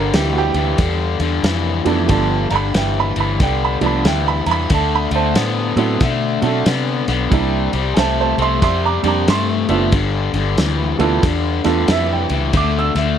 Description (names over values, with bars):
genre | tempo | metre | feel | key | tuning
electric blues shuffle | 92 BPM | 4/4 | swing 64% on 8ths | G mixolydian | A4 = 440 Hz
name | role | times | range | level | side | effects
warm upright piano | accompaniment | 0.0-13.2 s | F3 to E6 | -19 LUFS | right 9 dB | none
raw garage guitar | riff | 0.0-13.2 s | G2 to B3 | -20 LUFS | left 7 dB | overdrive
vintage muted fingered electric bass | bass | 0.0-13.2 s | F#1 to C3 | -20 LUFS | equal | none
warm soul drum kit | drums | 0.1-13.1 s | kick drum, ride cymbal, snare drum | -22 LUFS | equal | none
room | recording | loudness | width
light reverb | none | -15 LUFS | side -9 dB against mid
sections
0.0-13.2 A section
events
none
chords
0.0 G7; 4.7 D7; 7.3 C7; 9.9 G7; 12.5 D5